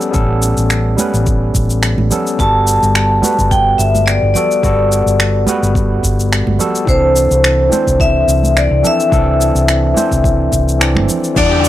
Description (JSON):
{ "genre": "sunset chillout", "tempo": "107 BPM", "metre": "4/4", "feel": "swing 55% on 16ths", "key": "unclear", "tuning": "A4 = 440 Hz", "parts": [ { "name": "overdriven tine electric piano", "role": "accompaniment", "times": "0.0-11.7 s", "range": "E3 to F#5", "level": "-18 LUFS", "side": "right 1 dB", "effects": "auto-pan, analog delay" }, { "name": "electronic cabasa and finger snaps", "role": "drums", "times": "0.0-11.7 s", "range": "none", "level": "-19 LUFS", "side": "equal", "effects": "none" }, { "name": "hollow-body short-scale fingered electric bass", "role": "bass", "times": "0.1-11.7 s", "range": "G1 to E2", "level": "-15 LUFS", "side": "equal", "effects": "none" }, { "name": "electronic kick drum", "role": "drums", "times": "0.1-11.5 s", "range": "none", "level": "-17 LUFS", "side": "equal", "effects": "none" }, { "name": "congas", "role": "percussion", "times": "1.0-11.2 s", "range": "none", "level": "-22 LUFS", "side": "right 4 dB", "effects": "none" }, { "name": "vibraphone with hard mallets", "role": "melody", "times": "2.4-11.7 s", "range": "C5 to A5", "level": "-15 LUFS", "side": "left 2 dB", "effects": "analog delay" }, { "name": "concert harp", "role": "arpeggios", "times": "11.4-11.7 s", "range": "D4 to G4", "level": "-17 LUFS", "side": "left 3 dB", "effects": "none" }, { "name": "downlifter", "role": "sound effects", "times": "11.4-11.7 s", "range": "none", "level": "-16 LUFS", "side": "left 1 dB", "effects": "none" } ], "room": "studio ambience", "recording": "dry, gritty hardware recording", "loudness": "-11 LUFS", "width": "side -13 dB against mid", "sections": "0.0-11.4 A section", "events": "none", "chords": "0.0 A9; 2.4 Gmaj9; 6.9 C69" }